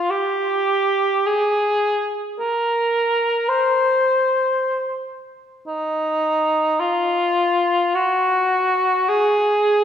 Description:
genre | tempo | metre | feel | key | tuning
classical, free, expressive piece for unaccompanied cor anglais | free time | none | none | unclear | A4 = 440 Hz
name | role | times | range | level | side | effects
mellow cor anglais | solo | 0.0-9.8 s | Eb4 to C5 | -17 LUFS | equal | none
room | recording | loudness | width
wet scoring stage reverb, RT60 1.8 s | recorded in a church or concert hall | -17 LUFS | side -9 dB against mid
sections
0.1-9.8 A section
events
none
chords
none

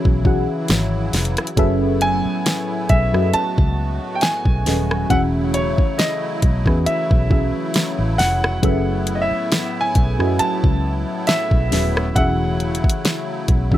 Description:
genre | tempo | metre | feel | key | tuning
contemporary R&B | 68 BPM | 4/4 | swing 54% on 16ths | F# dorian | A4 = 440 Hz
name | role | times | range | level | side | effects
mellow FM electric piano | accompaniment | 0.0-13.8 s | E3 to F#5 | -23 LUFS | left 1 dB | chorus, phaser
musette accordion | sustained chords | 0.0-13.8 s | A2 to F#4 | -28 LUFS | left 1 dB | sidechain pumping
vintage muted fingered electric bass | bass | 0.1-13.8 s | D#1 to F#2 | -21 LUFS | equal | none
smooth R&B drum kit | drums | 0.1-13.8 s | hi-hat, kick drum, rim click, snare drum | -18 LUFS | equal | none
warm grand piano | melody | 2.0-13.8 s | C#5 to A5 | -23 LUFS | right 1 dB | tape echo
room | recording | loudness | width
little or no reverb | none | -16 LUFS | side -13 dB against mid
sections
0.0-13.8 A section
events
none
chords
0.0 E69; 1.6 F#m11; 5.1 E69; 8.6 F#m11; 12.2 E69

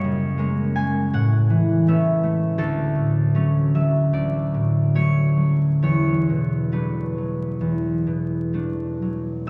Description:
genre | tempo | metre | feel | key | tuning
classical, solo harp piece | 58-85 BPM | 4/4 | rubato | unclear | A4 = 440 Hz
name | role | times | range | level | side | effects
concert harp | solo | 0.0-9.5 s | D2 to G#5 | -21 LUFS | equal | none
room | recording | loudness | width
wet cathedral reverb, RT60 4.7 s | heard from further back in the room, vinyl crackle | -21 LUFS | mono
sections
0.0-9.5 A section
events
none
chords
0.0 F#add9; 1.1 Aadd9; 2.6 Dmaj7; 5.8 E9sus4

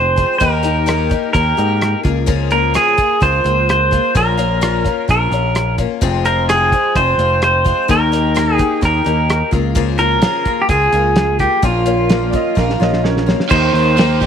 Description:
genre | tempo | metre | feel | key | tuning
folk rock and heartland rock | 128 BPM | 4/4 | straight | unclear | A4 = 440 Hz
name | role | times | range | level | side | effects
pedal steel guitar | melody | 0.0-14.3 s | F4 to C5 | -15 LUFS | right 2 dB | none
picked twelve-string acoustic guitar | accompaniment | 0.0-14.3 s | F2 to Ab4 | -20 LUFS | left 12 dB | none
picked electric bass | bass | 0.0-14.3 s | F1 to Ab2 | -18 LUFS | right 1 dB | none
cloth-damped thuddy drum kit | drums | 0.2-14.3 s | crash cymbal, hi-hat, kick drum, rim click, snare drum | -18 LUFS | right 1 dB | none
bright upright piano | second line | 12.3-13.4 s | Db4 to Eb5 | -23 LUFS | right 11 dB | none
overdriven electric guitar | riff | 13.5-14.3 s | Eb3 to G4 | -18 LUFS | right 14 dB | none
room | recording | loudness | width
light reverb | 1960s-style stereo with parts hard left and right | -12 LUFS | side -8 dB against mid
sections
0.0-13.5 A section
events
drum fill 12.6-13.5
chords
0.4 Eb; 2.0 Db6; 4.1 Bbm; 6.0 Fm; 7.9 Eb; 9.5 Db6; 11.6 Bbm; 13.5 Eb

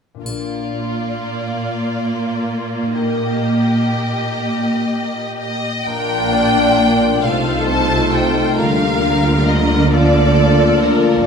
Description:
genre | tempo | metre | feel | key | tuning
classical, slow romantic movement for symphony orchestra | 39-46 BPM (dotted quarters) | 6/8 | rubato | Bb major | A4 = 438 Hz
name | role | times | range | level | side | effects
concert harp | arpeggios | 0.1-11.3 s | Bb2 to Bb4 | -25 LUFS | left 8 dB | none
rich symphonic viola section | accompaniment | 0.2-11.2 s | F3 to F4 | -22 LUFS | equal | none
rich studio violin section | melody | 0.3-11.3 s | Bb4 to A5 | -22 LUFS | left 2 dB | none
warm symphonic violin section | second line | 0.3-11.3 s | F4 to D5 | -22 LUFS | right 1 dB | none
warm symphonic cello section | bass | 0.3-11.3 s | Bb2 to D3 | -21 LUFS | right 2 dB | none
warm symphonic double bass section | bass | 0.3-1.2, 5.9-11.3 s | Bb1 to D2 | -21 LUFS | right 2 dB | none
triangle | percussion | 0.3-2.1 s | none | -36 LUFS | left 1 dB | none
warm French horn section | sustained chords | 5.9-11.3 s | A3 to F4 | -20 LUFS | left 3 dB | none
room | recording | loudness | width
wet recital hall reverb, RT60 1.6 s | none | -14 LUFS | side -6 dB against mid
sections
0.3-5.9 A section; 5.9-11.3 B section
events
none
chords
0.3 Bb; 3.0 Eb/Bb; 5.9 Bb; 7.2 F7/C; 8.6 Bb/D

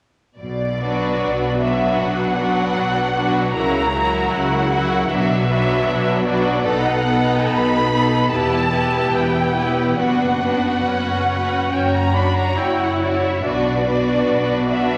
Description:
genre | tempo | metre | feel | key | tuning
classical, slow romantic movement for symphony orchestra | 67-79 BPM | 4/4 | rubato | B minor | A4 = 440 Hz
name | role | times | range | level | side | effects
warm symphonic violin section | melody | 0.4-15.0 s | D5 to B5 | -24 LUFS | equal | none
rich symphonic cello section | bass | 0.4-15.0 s | E2 to C#3 | -27 LUFS | equal | none
rich symphonic double bass section | bass | 0.4-15.0 s | E1 to C#2 | -29 LUFS | equal | none
rich studio violin section | second line | 0.8-15.0 s | F#4 to C#5 | -25 LUFS | equal | none
rich symphonic viola section | accompaniment | 0.8-15.0 s | F#3 to E4 | -24 LUFS | equal | none
room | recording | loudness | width
wet scoring stage reverb, RT60 1.8 s | vinyl crackle | -19 LUFS | mono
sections
0.4-15.0 A section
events
none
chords
0.4 Bm; 3.5 F#7/C#; 5.1 Bm; 6.7 B7; 8.3 Em; 10.0 Bm/F#; 11.7 F#5; 13.4 Bm

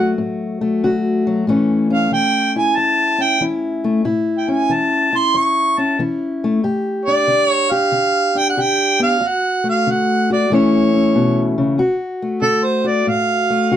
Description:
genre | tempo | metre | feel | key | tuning
acoustic country blues, solo or duo | 93 BPM | 4/4 | swing 66% on 8ths | D major | A4 = 440 Hz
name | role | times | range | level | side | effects
mellow harmonica | melody | 0.0-13.8 s | A4 to C#6 | -16 LUFS | right 2 dB | none
fingerpicked steel-string acoustic guitar | accompaniment | 0.0-13.8 s | D2 to G4 | -17 LUFS | left 2 dB | none
room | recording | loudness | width
moderate small room ambience, RT60 0.5 s | none | -14 LUFS | side -10 dB against mid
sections
0.0-11.8 A section; 11.8-13.8 B section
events
harmonica solo 11.8-13.8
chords
0.0 D; 1.5 A; 6.6 G5; 9.2 D; 10.5 A; 11.8 D

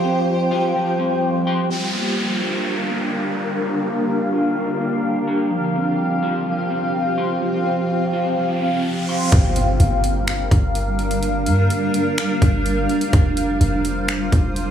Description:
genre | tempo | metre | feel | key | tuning
hip hop, atmospheric cloud-rap | 126 BPM | 4/4 | half-time | G minor | A4 = 440 Hz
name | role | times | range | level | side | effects
granular cloud pad | sustained chords | 0.0-14.7 s | G3 to G5 | -20 LUFS | equal | built-in reverb, phaser, sidechain pumping, low-pass filter
electric guitar at the edge of break-up | arpeggios | 0.0-9.3 s | F3 to C6 | -23 LUFS | equal | analog chorus, low-pass filter, tape echo
downlifter, riser and impact | sound effects | 1.7-11.2 s | none | -28 LUFS | equal | none
warm 808-style bass | bass | 9.3-14.7 s | F1 to G2 | -20 LUFS | equal | none
trap drum kit | drums | 9.3-14.7 s | finger snaps, hi-hat, kick drum | -21 LUFS | equal | none
room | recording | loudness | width
moderate digital room reverb, RT60 0.9 s | studio reverb | -17 LUFS | side -9 dB against mid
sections
0.0-1.7 A section; 1.7-9.3 B section; 9.3-14.7 C section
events
break 0.0-1.7; filter sweep 1.7-9.3; riser 8.3-9.3; impact 9.3-11.2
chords
0.0 Fsus2; 1.7 Gm7; 5.5 Fsus2; 9.3 Gm7; 13.1 Fsus2

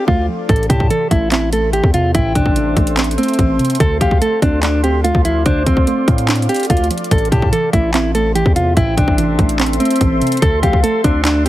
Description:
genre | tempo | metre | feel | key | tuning
hip hop, trap | 145 BPM | 4/4 | half-time | unclear | A4 = 444 Hz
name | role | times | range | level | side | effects
mellow electric guitar | melody | 0.0-11.5 s | C4 to A4 | -17 LUFS | equal | none
soft round pluck | accompaniment | 0.0-11.5 s | A2 to D4 | -21 LUFS | right 5 dB | chorus
deep dark ambient pad | sustained chords | 0.0-11.5 s | A4 to C6 | -25 LUFS | equal | chorus, built-in reverb
distorted 808-style bass | bass | 0.1-11.5 s | A1 to A2 | -18 LUFS | equal | distortion
trap drum kit | drums | 0.1-11.5 s | handclaps, hi-hat, kick drum | -17 LUFS | equal | none
hollow clarinet-like synth lead | second line | 0.7-10.8 s | C5 to A5 | -28 LUFS | left 4 dB | chorus, tape echo
room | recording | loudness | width
digital ambience | heavily compressed radio sound | -12 LUFS | side -14 dB against mid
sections
0.0-7.1 A section; 7.1-11.5 B section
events
break 0.0-0.5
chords
0.5 Am; 3.8 Dm7; 7.1 Am; 10.4 Dm7

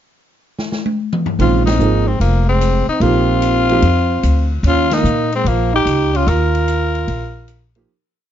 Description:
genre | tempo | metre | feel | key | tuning
modal jazz | 148 BPM | 4/4 | swing 67% on 8ths | Bb dorian | A4 = 439 Hz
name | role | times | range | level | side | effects
open jazz drum kit | drums | 0.6-7.8 s | hi-hat, ride cymbal, snare drum, toms | -25 LUFS | left 2 dB | none
growling tenor saxophone | melody | 1.4-7.8 s | Bb3 to Bb4 | -18 LUFS | left 5 dB | plate reverb
warm trombone | second line | 1.4-7.8 s | F3 to F4 | -21 LUFS | right 7 dB | none
warm grand piano | accompaniment | 1.4-3.8, 7.8-7.9 s | Eb3 to Ab4 | -18 LUFS | right 6 dB | none
upright bass | bass | 1.4-7.8 s | F1 to Bb2 | -16 LUFS | equal | none
room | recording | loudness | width
light reverb | dark, warm production, nothing above 7.5 kHz | -13 LUFS | side -10 dB against mid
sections
0.0-1.4 pickup bar; 1.4-7.9 A section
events
drum fill 0.6-1.4; band accent 1.6, 4.8; fade-out 6.3-7.9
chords
0.0 N.C.; 1.4 Bb9sus4; 4.6 Ebsus2

